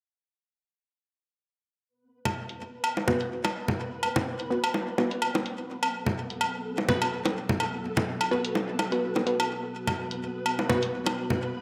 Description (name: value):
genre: minimal techno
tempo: 126 BPM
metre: 4/4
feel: swing 55% on 16ths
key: unclear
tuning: A4 = 440 Hz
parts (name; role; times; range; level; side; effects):
- deep dark ambient pad; texture; 4.7-11.6 s; B3 to F#5; -40 LUFS; equal; chorus, built-in reverb
- flickering grainy texture; texture; 2.5-11.6 s; B3 to B4; -40 LUFS; equal; built-in reverb, ensemble chorus
- cowbell, congas and bongos; percussion; 2.3-11.4 s; none; -31 LUFS; equal; delay
- electronic hi-hat; drums; 2.5-11.2 s; none; -40 LUFS; equal; low-pass filter on hats, low-pass filter on room
- wavetable chord stab; stabs; 3.1-10.8 s; B3 to B4; -33 LUFS; equal; delay
room: wet lush hall reverb, RT60 1.6 s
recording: bright 1980s-style digital production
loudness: -29 LUFS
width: mono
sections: 1.9-11.6 A section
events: none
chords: 1.9 B5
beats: | 1.89 2.36 2.84 3.31 | 3.79 4.27 4.74 5.22 | 5.69 6.17 6.65 7.12 | 7.60 8.07 8.55 9.03 | 9.50 9.98 10.46 10.93 | 11.41